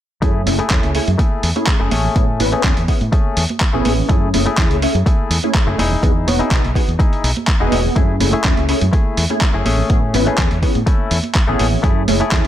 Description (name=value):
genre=filtered disco house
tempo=124 BPM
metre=4/4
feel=straight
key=F# dorian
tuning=A4 = 440 Hz
part: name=funky polysynth comp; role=accompaniment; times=0.2-12.5 s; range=A3 to D#5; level=-21 LUFS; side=equal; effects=chorus, phaser, sidechain pumping, low-pass filter
part: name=direct-recorded clean electric guitar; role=riff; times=0.2-12.5 s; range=A3 to G#4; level=-23 LUFS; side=left 5 dB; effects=vintage 12-bit sampler grit, sidechain pumping, low-pass filter
part: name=fingered electric bass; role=bass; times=0.2-12.5 s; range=E1 to A2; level=-19 LUFS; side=equal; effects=sidechain pumping, low-pass filter
part: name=dusty soul sampler-style drum kit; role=drums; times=0.2-12.5 s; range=handclaps, hi-hat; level=-22 LUFS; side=right 1 dB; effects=sidechain pumping on hats
part: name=electronic kick drum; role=drums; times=0.2-12.4 s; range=none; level=-16 LUFS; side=equal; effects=overdrive
part: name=tambourine and congas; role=percussion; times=0.2-12.5 s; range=none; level=-28 LUFS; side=right 5 dB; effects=sidechain pumping on perc, low-pass filter on perc
room=digital ambience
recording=none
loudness=-14 LUFS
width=side -11 dB against mid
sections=0.2-12.5 A section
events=filter sweep 0.2-12.5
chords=0.2 F#m9; 1.9 Amaj7; 4.1 F#m9; 5.8 Emaj7; 8.0 F#m9; 9.7 Amaj7; 11.8 F#m9